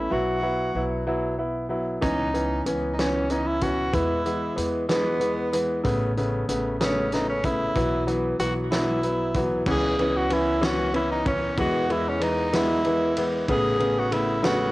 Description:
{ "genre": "six-eight pop ballad", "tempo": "63 BPM (dotted quarters)", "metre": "6/8", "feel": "straight", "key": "E major", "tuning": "A4 = 440 Hz", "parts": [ { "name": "raspy tenor saxophone", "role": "melody", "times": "0.0-14.7 s", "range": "B3 to G#4", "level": "-26 LUFS", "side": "equal", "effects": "cassette tape, tape echo" }, { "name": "clear concert grand piano", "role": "accompaniment", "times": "0.0-14.7 s", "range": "C#3 to E4", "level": "-25 LUFS", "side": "equal", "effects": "cassette tape" }, { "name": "upright bass", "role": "bass", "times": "0.0-14.7 s", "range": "A1 to E2", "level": "-32 LUFS", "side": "equal", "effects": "none" }, { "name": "loose indie drum kit", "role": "drums", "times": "2.0-14.6 s", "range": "crash cymbal, hi-hat, kick drum, ride cymbal, snare drum", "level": "-30 LUFS", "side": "equal", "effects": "none" } ], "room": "moderate studio reverb, RT60 0.6 s", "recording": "home recording on cassette", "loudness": "-22 LUFS", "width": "side -18 dB against mid", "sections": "0.0-9.7 A section; 9.7-14.7 B section", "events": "none", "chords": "0.1 Bsus4; 2.0 C#m7; 3.9 E; 5.8 Aadd9; 7.8 Bsus4; 9.7 C#m7; 11.6 E; 13.5 Aadd9" }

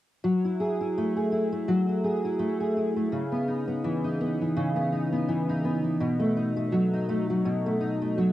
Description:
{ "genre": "indie pop", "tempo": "83 BPM", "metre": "4/4", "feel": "swing 55% on 16ths", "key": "F# dorian", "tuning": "A4 = 440 Hz", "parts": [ { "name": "fingerpicked steel-string acoustic guitar", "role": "accompaniment", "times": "0.2-8.3 s", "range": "B2 to G#4", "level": "-24 LUFS", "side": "equal", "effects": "analog chorus, vibrato effect, cassette tape" } ], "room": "moderate studio reverb, RT60 0.7 s", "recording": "home recording on cassette", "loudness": "-24 LUFS", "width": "side -14 dB against mid", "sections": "0.2-8.3 A section", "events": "none", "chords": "0.2 F#m9; 3.1 C#m9; 6.0 B7" }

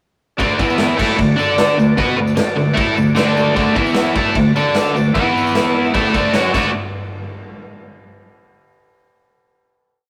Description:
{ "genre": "garage rock duo or trio", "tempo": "151 BPM", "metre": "4/4", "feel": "straight", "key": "D major", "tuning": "A4 = 439 Hz", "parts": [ { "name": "overdriven combo organ", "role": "sustained chords", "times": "0.4-6.7 s", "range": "E4 to F#5", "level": "-28 LUFS", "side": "equal", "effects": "none" }, { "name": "crunchy overdriven guitar", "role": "riff", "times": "0.4-6.7 s", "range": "D3 to D5", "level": "-17 LUFS", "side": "equal", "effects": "spring reverb" }, { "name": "raw garage drum kit", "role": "drums", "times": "0.4-6.6 s", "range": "crash cymbal, kick drum, snare drum", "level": "-23 LUFS", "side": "equal", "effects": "none" }, { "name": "tambourine", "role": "percussion", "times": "0.4-6.7 s", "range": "none", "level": "-43 LUFS", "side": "equal", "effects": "none" } ], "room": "wet booth ambience, RT60 0.3 s", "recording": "rough rehearsal-room recording, tube saturation", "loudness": "-16 LUFS", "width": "mono", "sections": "0.4-6.7 riff; 6.7-8.3 final hit", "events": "none", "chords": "0.4 D; 0.6 E5; 1.0 D; 3.8 E5; 4.2 D; 5.1 E5; 5.9 D; 6.3 F#5; 6.5 D; 6.7 N.C." }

